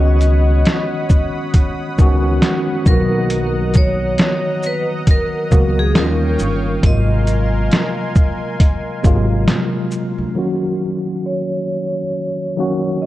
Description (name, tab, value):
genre	lo-fi hip hop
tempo	68 BPM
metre	4/4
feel	swing 58% on 16ths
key	Eb minor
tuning	A4 = 440 Hz
part	vibraphone with hard mallets	melody	0.0-13.1 s	Ab4 to Eb5	-24 LUFS	equal	low-pass filter, tape echo
part	tine electric piano	accompaniment	0.0-13.1 s	C3 to Gb4	-20 LUFS	equal	overdrive, fast stereo tremolo, cassette tape, low-pass filter
part	lush unison pad	sustained chords	0.0-10.3 s	Bb4 to Eb6	-28 LUFS	equal	chorus
part	upright bass	bass	0.0-10.3 s	G1 to Eb2	-17 LUFS	equal	none
part	trip hop sampler-style drum kit	drums	0.2-10.2 s	hi-hat, kick drum, shaker, snare drum	-14 LUFS	equal	none
room	digital ambience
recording	dark, warm production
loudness	-14 LUFS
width	side -15 dB against mid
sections	0.0-10.4 A section; 10.4-13.1 B section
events	filter sweep 10.4-13.1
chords	0.0 Db9sus4; 2.9 Bmaj7; 5.9 Eb9; 6.8 Ab13; 10.4 Ebm7